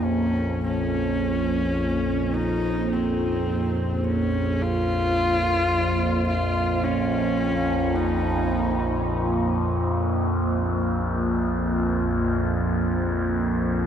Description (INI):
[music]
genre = dark ambient drone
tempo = free time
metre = none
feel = none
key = Bb minor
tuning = A4 = 438 Hz
[part]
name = rich horsehead fiddle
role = melody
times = 0.0-9.1 s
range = C4 to F4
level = -27 LUFS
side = left 1 dB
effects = tape echo
[part]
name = deep dark ambient pad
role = sustained chords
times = 0.0-13.9 s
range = Bb3 to C5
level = -26 LUFS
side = right 2 dB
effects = chorus, built-in reverb
[part]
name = overtone-sweeping drone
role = drone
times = 0.0-13.9 s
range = Bb1 to F2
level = -24 LUFS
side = equal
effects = chorus, built-in reverb
[sound]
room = wet huge ambient reverb, RT60 8.0 s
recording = none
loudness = -21 LUFS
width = side -8 dB against mid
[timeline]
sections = 0.1-13.9 A section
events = none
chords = 0.0 Bb5